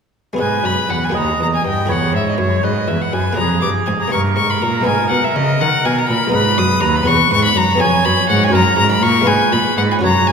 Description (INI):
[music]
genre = classical, baroque-style sonata movement with continuo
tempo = 81 BPM (dotted quarters)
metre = 6/8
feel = rubato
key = G# minor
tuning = A4 = 440 Hz
[part]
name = buff-stop harpsichord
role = accompaniment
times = 0.3-10.3 s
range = D#2 to E5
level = -20 LUFS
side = left 1 dB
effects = none
[part]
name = rich violin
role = melody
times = 0.4-10.3 s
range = C#5 to D#6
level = -17 LUFS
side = left 4 dB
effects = none
[part]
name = clear oboe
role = second line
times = 0.4-10.3 s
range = G#4 to D#5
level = -20 LUFS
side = right 4 dB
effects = none
[part]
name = rich cello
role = bass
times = 0.4-10.3 s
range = D#2 to D#3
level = -18 LUFS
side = right 1 dB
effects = none
[sound]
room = wet scoring stage reverb, RT60 1.9 s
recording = minimal, uncompressed stereo recording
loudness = -13 LUFS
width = side -6 dB against mid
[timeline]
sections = 0.4-10.3 A section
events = none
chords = 0.4 G#m; 1.2 D#; 1.9 E; 3.4 A#7/E#; 4.1 D#/G; 4.9 G#m; 7.1 C#m7/E; 7.8 C#7/E#; 8.5 F#; 9.3 E/G#